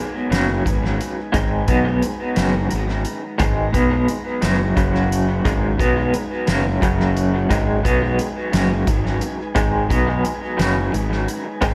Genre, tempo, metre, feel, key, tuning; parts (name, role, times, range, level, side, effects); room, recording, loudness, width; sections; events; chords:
psychedelic rock; 58 BPM (dotted quarters); 6/8; straight; G# minor; A4 = 440 Hz
mellow tonewheel organ; sustained chords; 0.0-11.7 s; F#3 to A#5; -32 LUFS; equal; slow rotary speaker
electric guitar through a small old amp; riff; 0.3-11.7 s; F#2 to B3; -22 LUFS; equal; tremolo, tape echo
fuzz fingered electric bass; bass; 0.3-11.7 s; F#1 to B1; -25 LUFS; equal; overdrive
soft-mallet drum kit; drums; 0.3-11.7 s; hi-hat, kick drum, snare drum; -26 LUFS; equal; tape echo
light reverb, small room ambience; echo-heavy mix; -19 LUFS; mono
0.0-11.7 A section
0.0 G#m; 4.8 F#5; 5.5 G#m; 6.8 F#5; 7.5 G#m